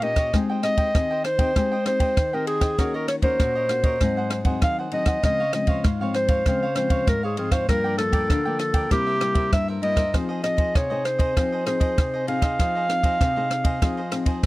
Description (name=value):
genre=samba and choro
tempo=98 BPM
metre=4/4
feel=straight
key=F minor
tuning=A4 = 441 Hz
part: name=warm clarinet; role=melody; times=0.0-14.4 s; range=G4 to F5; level=-24 LUFS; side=equal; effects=none
part: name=cavaquinho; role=accompaniment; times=0.0-14.5 s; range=Eb4 to G5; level=-32 LUFS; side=right 4 dB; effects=none
part: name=nylon-string guitar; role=accompaniment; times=0.0-14.5 s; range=G2 to Ab4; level=-27 LUFS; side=left 3 dB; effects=none
part: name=compact cocktail drum kit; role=drums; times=0.0-14.5 s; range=kick drum, ride cymbal, rim click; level=-22 LUFS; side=equal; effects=none
room=light reverb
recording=dry, close 1970s-style studio recording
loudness=-20 LUFS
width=side -18 dB against mid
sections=0.0-14.5 A section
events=none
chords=0.3 Abmaj7; 2.8 Ebm7; 4.0 Ab7; 5.2 Dbmaj7; 7.7 Gm7; 8.9 C7; 10.1 Fm7